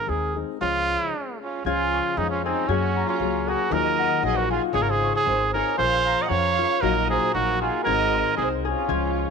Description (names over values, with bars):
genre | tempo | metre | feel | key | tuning
mexican folk, mariachi | 116 BPM | 2/4 | swing 54% on 8ths | Db major | A4 = 439 Hz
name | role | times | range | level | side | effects
clear trumpet | melody | 0.0-9.3 s | C4 to Eb5 | -24 LUFS | right 4 dB | none
nylon-string guitar | accompaniment | 0.0-9.3 s | Ab2 to Bb4 | -28 LUFS | left 14 dB | none
upright bass | bass | 0.1-9.2 s | Ab1 to Gb2 | -29 LUFS | right 1 dB | none
dark studio violin section | second line | 1.4-9.3 s | Eb4 to Gb5 | -30 LUFS | right 10 dB | none
concert harp | arpeggios | 1.7-9.3 s | F4 to Ab6 | -30 LUFS | left 10 dB | tape echo
room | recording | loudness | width
moderate plate reverb, RT60 2.4 s | 1960s-style stereo with parts hard left and right | -20 LUFS | side -5 dB against mid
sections
0.0-1.6 A section; 1.6-9.3 A section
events
stop 1.1-1.6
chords
0.0 Ab; 0.6 Db; 2.7 Gbadd9; 3.7 Ebmadd9; 4.8 Absus4; 5.3 Abadd9; 5.8 Bbm; 6.8 Ebm/Bb; 7.9 Ab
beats
0.08 | 0.60 1.12 | 1.65 2.17 | 2.69 3.21 | 3.72 4.24 | 4.75 5.27 | 5.79 6.31 | 6.83 7.34 | 7.86 8.37 | 8.89